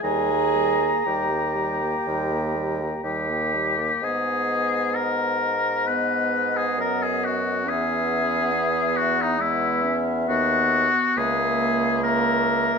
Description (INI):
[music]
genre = classical, slow romantic movement for wind quintet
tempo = 58-72 BPM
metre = 4/4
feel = rubato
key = G# minor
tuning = A4 = 440 Hz
[part]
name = silver concert flute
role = melody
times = 0.0-12.8 s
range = D#5 to G#5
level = -31 LUFS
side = left 8 dB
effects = none
[part]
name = warm oboe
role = second line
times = 0.0-12.8 s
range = D#4 to A#5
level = -23 LUFS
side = left 3 dB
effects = none
[part]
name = clear French horn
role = accompaniment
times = 0.0-12.8 s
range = G3 to B3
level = -31 LUFS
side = right 1 dB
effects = none
[part]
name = clear clarinet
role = accompaniment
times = 0.0-12.8 s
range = G#3 to G#4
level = -28 LUFS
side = right 10 dB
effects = none
[part]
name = warm bassoon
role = bass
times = 0.0-12.8 s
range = C#2 to G#2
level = -28 LUFS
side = right 3 dB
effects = none
[sound]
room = moderate recital hall reverb, RT60 1.6 s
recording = close, detailed microphones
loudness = -20 LUFS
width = side -5 dB against mid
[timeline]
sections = 0.0-4.0 A section; 4.0-12.8 B section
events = none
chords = 0.0 D#; 4.0 G#m; 7.6 E; 11.2 A#dim/C#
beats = | 0.03 1.06 2.06 3.04 | 4.02 4.96 5.87 6.77 | 7.64 8.51 9.38 10.28 | 11.17 12.03